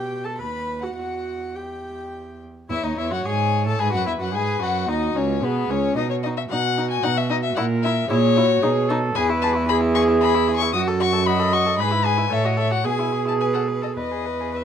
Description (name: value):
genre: quick classical-period movement for string quartet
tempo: 101-115 BPM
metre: 3/4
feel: rubato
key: E major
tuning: A4 = 440 Hz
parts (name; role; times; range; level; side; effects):
- warm violin; melody; 0.0-14.6 s; B4 to D#6; -25 LUFS; left 9 dB; none
- warm violin; second line; 0.0-14.6 s; B3 to B5; -27 LUFS; left 4 dB; none
- warm viola; accompaniment; 0.0-14.6 s; F#4 to D#5; -25 LUFS; right 3 dB; none
- rich cello; bass; 0.0-14.6 s; C#2 to B2; -24 LUFS; right 3 dB; none
room: light reverb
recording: dark, warm production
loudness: -19 LUFS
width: side -8 dB against mid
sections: 0.0-2.7 A section; 2.7-14.6 A section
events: none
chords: 0.4 B/D#; 1.0 Em; 2.7 E; 4.3 B; 5.4 G#madd11; 6.0 B; 7.6 A#m7b5; 8.6 B; 9.2 E; 10.7 D#dim/F#; 11.8 E/G#; 12.3 F#m/A; 12.8 E/B; 14.0 E